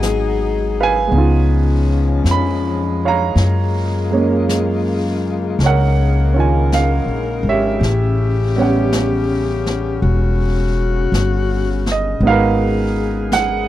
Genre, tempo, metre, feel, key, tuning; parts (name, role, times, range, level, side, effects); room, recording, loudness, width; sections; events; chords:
jazz ballad; 54 BPM; 4/4; swing 68% on 8ths; A4 = 440 Hz
warm grand piano; accompaniment; 0.0-13.7 s; Eb3 to Cb6; -19 LUFS; right 5 dB
mellow saxophone section; sustained chords; 0.0-13.7 s; Db3 to Bb4; -22 LUFS; left 7 dB
upright bass; bass; 0.0-13.7 s; E1 to Gb2; -17 LUFS; equal
jazz brush drum kit; drums; 0.0-13.7 s; brushed snare drum, hi-hat, snare drum; -27 LUFS; left 1 dB
light reverb; dry, close 1970s-style studio recording; -14 LUFS; side -13 dB against mid
0.0-13.7 A section
0.0 Abm7; 1.1 Db7; 3.4 Gbmaj9; 7.8 A13; 12.2 Abm9